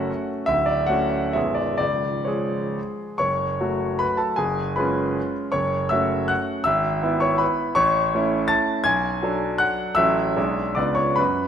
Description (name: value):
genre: classical, romantic triple-time dance for piano with dotted rhythms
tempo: 120-173 BPM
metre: 3/4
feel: rubato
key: F# minor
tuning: A4 = 440 Hz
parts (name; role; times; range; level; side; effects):
- clear concert grand piano; solo; 0.0-11.5 s; B0 to A6; -20 LUFS; equal; none
room: moderate scoring stage reverb, RT60 1.5 s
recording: none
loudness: -20 LUFS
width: side -8 dB against mid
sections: 0.0-3.2 A section; 3.2-11.5 B section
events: none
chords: 0.5 Dmaj7; 1.4 G#dim/B; 1.8 C#; 3.2 F#m; 4.4 C#7/F#; 5.5 F#m; 6.7 E/G#; 7.8 A; 8.9 Bm7; 10.0 F#m/A; 10.4 G#dim/B; 10.8 C#7b9